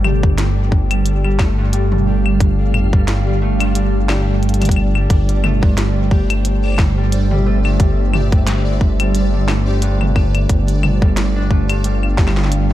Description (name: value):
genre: IDM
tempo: 89 BPM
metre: 4/4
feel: swing 56% on 16ths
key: unclear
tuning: A4 = 438 Hz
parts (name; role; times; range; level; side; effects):
- glassy FM pad; sustained chords; 0.0-12.7 s; G3 to F5; -24 LUFS; right 3 dB; ensemble chorus, built-in reverb
- Celtic harp; arpeggios; 0.0-12.7 s; G2 to G4; -24 LUFS; right 1 dB; vintage 12-bit sampler grit, digital delay
- dark detuned saw bass; bass; 0.0-12.7 s; G1; -16 LUFS; equal; tube saturation
- glitchy drum kit; drums; 0.0-12.7 s; claves, hi-hat, snare drum, toms; -24 LUFS; left 1 dB; overdrive
- pulsing gated texture; texture; 0.1-12.7 s; D4 to D5; -29 LUFS; equal; chorus, built-in reverb, sidechain pumping
- electronic kick drum; drums; 0.2-12.3 s; none; -14 LUFS; equal; overdrive
room: little or no reverb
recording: dark, warm production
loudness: -13 LUFS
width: side -14 dB against mid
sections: 0.0-12.7 A section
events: none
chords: 0.0 G5; 5.1 Am7/G; 10.5 G5